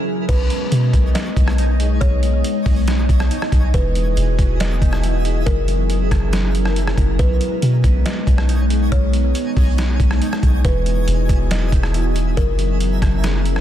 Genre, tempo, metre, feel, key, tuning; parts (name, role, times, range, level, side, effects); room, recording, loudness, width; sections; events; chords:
hip hop, atmospheric cloud-rap; 139 BPM; 4/4; half-time; B major; A4 = 440 Hz
glassy FM pad; sustained chords; 0.0-13.6 s; E3 to D#5; -24 LUFS; equal; ensemble chorus, built-in reverb, sidechain pumping
twinkling granular texture; texture; 0.0-13.6 s; D#4 to G#5; -33 LUFS; right 1 dB; built-in reverb
kalimba; melody; 0.3-13.2 s; A#4 to D#5; -28 LUFS; equal; low-pass filter, tape echo
concert harp; arpeggios; 0.3-13.6 s; E3 to G#4; -30 LUFS; left 7 dB; low-pass filter, tape echo
soft 808-style bass; bass; 0.3-13.6 s; E1 to B2; -18 LUFS; equal
trip hop sampler-style drum kit; drums; 0.3-13.6 s; crash cymbal, hi-hat, kick drum, rim click, snare drum; -20 LUFS; equal
little or no reverb; dense, heavily limited modern master; -15 LUFS; side -11 dB against mid
0.3-13.6 A section
break 0.0
0.3 B69; 3.7 Emaj7; 5.5 F#9; 7.2 B69; 10.6 Emaj7; 12.4 F#9